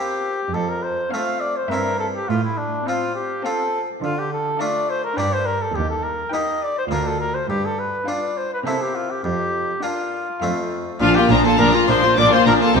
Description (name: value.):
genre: classical, baroque-style concerto movement with solo episodes.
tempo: 103 BPM.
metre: 3/4.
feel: straight.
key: F major, Bb major from 4.0 s.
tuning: A4 = 441 Hz.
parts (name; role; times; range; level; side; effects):
mellow trumpet; melody; 0.0-12.8 s; D4 to F5; -22 LUFS; left 1 dB; none.
rich chamber violin section; melody; 0.0-12.8 s; F5 to D6; -23 LUFS; left 4 dB; none.
rich chamber violin section; second line; 0.0-12.8 s; D4 to G5; -24 LUFS; left 4 dB; none.
dark studio viola section; accompaniment; 0.0-12.8 s; F3 to F4; -26 LUFS; equal; none.
harpsichord; accompaniment; 0.0-12.8 s; D2 to G4; -27 LUFS; equal; none.
warm chamber cello section; bass; 0.5-12.8 s; D2 to D3; -26 LUFS; right 4 dB; none.
rich chamber double bass section; bass; 11.0-12.8 s; Bb1 to C2; -25 LUFS; right 4 dB; none.
room: moderate concert hall reverb, RT60 1.8 s.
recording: minimal, uncompressed stereo recording.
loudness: -18 LUFS.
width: side -5 dB against mid.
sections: 0.0-11.0 A section; 11.0-12.8 B section.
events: none.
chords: 0.0 C7(no3); 0.5 F; 1.7 C7/G; 2.3 F/A; 4.0 Dm; 5.2 Gm; 5.8 Eb; 6.9 Bb/D; 7.5 G5; 8.7 C7; 9.2 Bb/F; 10.4 F; 11.0 Bb.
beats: | 0.54 1.12 1.71 | 2.29 2.86 3.44 | 4.02 4.60 5.18 | 5.75 6.33 6.91 | 7.49 8.07 8.65 | 9.24 9.83 10.42 | 11.01 11.59 12.17 | 12.75.